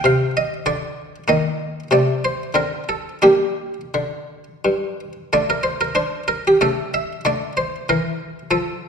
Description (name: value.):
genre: classical, baroque-style suite movement for harpsichord.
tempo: 82-98 BPM.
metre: 3/4.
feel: rubato.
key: G minor, D minor from 5.3 s.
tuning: A4 = 440 Hz.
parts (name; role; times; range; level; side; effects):
buff-stop harpsichord; solo; 0.0-8.9 s; G2 to F5; -18 LUFS; equal; none.
room: moderate recital hall reverb, RT60 1.6 s.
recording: none.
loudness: -18 LUFS.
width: side -6 dB against mid.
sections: 0.0-5.3 A section; 5.3-8.9 A section.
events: none.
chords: 0.0 Bbadd9; 1.3 Eb5; 1.9 Amadd11/C; 2.6 D5; 3.2 Gm; 5.3 D5; 6.6 A/C#; 7.2 Dm.